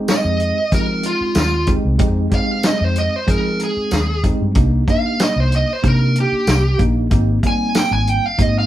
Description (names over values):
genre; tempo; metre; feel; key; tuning
straight-eighth soul blues; 94 BPM; 4/4; straight; unclear; A4 = 440 Hz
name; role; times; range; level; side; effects
mellow tine electric piano; accompaniment; 0.0-8.7 s; G3 to Ab4; -22 LUFS; right 1 dB; medium stereo tremolo
smooth overdriven lead guitar; melody; 0.1-8.7 s; F4 to Ab5; -20 LUFS; right 1 dB; none
warm soul drum kit; drums; 0.1-8.5 s; hi-hat, kick drum, snare drum, tambourine; -18 LUFS; equal; none
vintage muted fingered electric bass; bass; 0.2-8.7 s; Ab1 to F3; -19 LUFS; equal; none
room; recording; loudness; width
wet studio reverb, RT60 0.5 s; band playing live in one room; -14 LUFS; side -13 dB against mid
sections
0.0-8.7 A section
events
lead electric guitar solo 0.0-8.7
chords
0.0 Fm7; 4.6 Cm7; 7.1 Abmaj7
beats
0.08 0.72 1.36 | 2.00 2.64 3.27 3.91 | 4.55 5.19 5.83 6.47 | 7.11 7.75 8.39